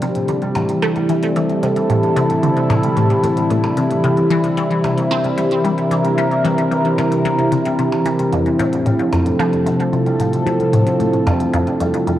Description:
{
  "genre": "ambient, sequencer-driven space music",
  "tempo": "112 BPM",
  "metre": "4/4",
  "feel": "straight",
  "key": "unclear",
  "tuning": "A4 = 441 Hz",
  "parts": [
    { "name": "sweeping resonant pad", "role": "sustained chords", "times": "0.0-12.2 s", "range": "C3 to Bb4", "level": "-18 LUFS", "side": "right 1 dB", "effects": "chorus, phaser" },
    { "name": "concert harp", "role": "arpeggios", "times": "0.0-12.2 s", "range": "D3 to G4", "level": "-20 LUFS", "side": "left 1 dB", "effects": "auto-pan, low-pass filter, tape echo" },
    { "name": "resonant blip pluck", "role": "riff", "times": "0.0-12.2 s", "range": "F2 to C4", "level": "-20 LUFS", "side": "left 1 dB", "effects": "phaser, lush chorus, tape echo" },
    { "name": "electronic hi-hat and percussion blips", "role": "percussion", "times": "0.0-12.2 s", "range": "none", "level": "-33 LUFS", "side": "equal", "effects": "overdrive, tape echo" }
  ],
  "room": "moderate plate reverb, RT60 2.9 s",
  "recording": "worn, warbling old tape, cassette tape, warbly pitch drift",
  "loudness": "-14 LUFS",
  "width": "side -13 dB against mid",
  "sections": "0.0-12.2 A section",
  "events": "none",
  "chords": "0.0 Am7; 4.0 C7; 8.3 Fmaj7"
}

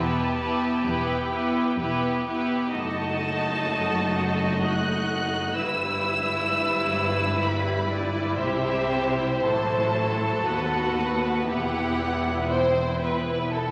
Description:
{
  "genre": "classical, slow romantic movement for string orchestra",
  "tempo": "56-67 BPM",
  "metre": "3/4",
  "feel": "rubato",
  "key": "E minor",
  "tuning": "A4 = 440 Hz",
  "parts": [
    { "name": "rich studio violin section", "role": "melody", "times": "0.0-13.6 s", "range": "D5 to F#6", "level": "-32 LUFS", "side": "equal", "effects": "none" },
    { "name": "clear studio violin section", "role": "second line", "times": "0.0-13.7 s", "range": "E4 to D#5", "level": "-30 LUFS", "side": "equal", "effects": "none" },
    { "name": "rich studio viola section", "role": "accompaniment", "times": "0.0-13.7 s", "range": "F#3 to F#4", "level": "-30 LUFS", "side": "equal", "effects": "none" },
    { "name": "clear studio double bass section", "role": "bass", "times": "0.0-13.7 s", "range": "E1 to D#2", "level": "-37 LUFS", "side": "equal", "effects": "none" },
    { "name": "rich studio cello section", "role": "bass", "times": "0.0-13.7 s", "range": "D#2 to C3", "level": "-34 LUFS", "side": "equal", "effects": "none" }
  ],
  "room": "wet concert hall reverb, RT60 1.8 s",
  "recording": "vinyl crackle",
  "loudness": "-25 LUFS",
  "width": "mono",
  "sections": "0.0-13.7 A section",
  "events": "none",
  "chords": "0.0 Em; 2.7 D#dim/F#; 5.6 Em/G; 8.4 C; 9.4 F#m7b5/A; 10.5 B7/D#; 11.5 Em"
}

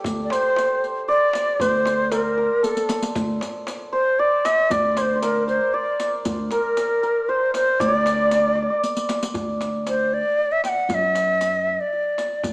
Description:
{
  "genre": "Persian modal ensemble",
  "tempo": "116 BPM",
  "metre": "3/4",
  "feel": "straight",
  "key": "D dastgah homayun",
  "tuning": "A4 = 440 Hz",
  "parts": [
    { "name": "santur", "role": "second line", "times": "0.0-11.2 s", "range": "G4 to Eb5+45c", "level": "-25 LUFS", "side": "right 1 dB", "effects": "none" },
    { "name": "upright bass", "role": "bass", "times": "0.0-12.5 s", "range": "D2 to F#2", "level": "-28 LUFS", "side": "equal", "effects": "none" },
    { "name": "tombak", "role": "percussion", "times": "0.0-12.5 s", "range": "none", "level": "-35 LUFS", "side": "equal", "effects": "none" },
    { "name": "riq", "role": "percussion", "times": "0.1-12.5 s", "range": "none", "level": "-32 LUFS", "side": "left 1 dB", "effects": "none" },
    { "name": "bright reedy ney", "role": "melody", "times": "0.2-12.5 s", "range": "A4 to G5", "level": "-20 LUFS", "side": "equal", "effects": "none" }
  ],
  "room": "moderate recital hall reverb, RT60 1.6 s",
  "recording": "small speaker sound",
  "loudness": "-18 LUFS",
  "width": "side -26 dB against mid",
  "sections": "0.0-9.4 A section; 9.4-12.5 B section",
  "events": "drum fill 2.6-3.2, 8.8-9.4",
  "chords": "none"
}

